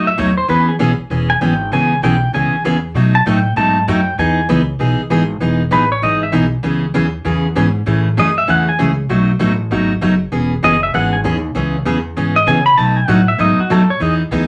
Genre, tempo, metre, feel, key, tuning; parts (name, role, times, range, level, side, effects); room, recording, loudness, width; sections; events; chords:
country, western swing; 195 BPM; 4/4; swing 63% on 8ths; E major; A4 = 440 Hz
pedal steel guitar; melody; 0.0-14.1 s; F#4 to B5; -18 LUFS; equal
picked steel-string acoustic guitar; accompaniment; 0.0-14.4 s; B2 to G#4; -18 LUFS; equal
upright bass; bass; 0.0-14.5 s; E1 to C#3; -22 LUFS; equal
wet studio ambience, RT60 0.5 s; -15 LUFS; mono
0.0-5.4 A section; 5.4-14.5 A section
pedal steel guitar solo 0.0-5.4, 5.4-14.5
0.5 E6; 1.7 C#m7; 3.0 B7; 4.2 Emaj7; 6.6 C#m7; 7.9 Amaj7; 9.1 B7; 10.3 E6; 11.6 C#m7; 12.8 B7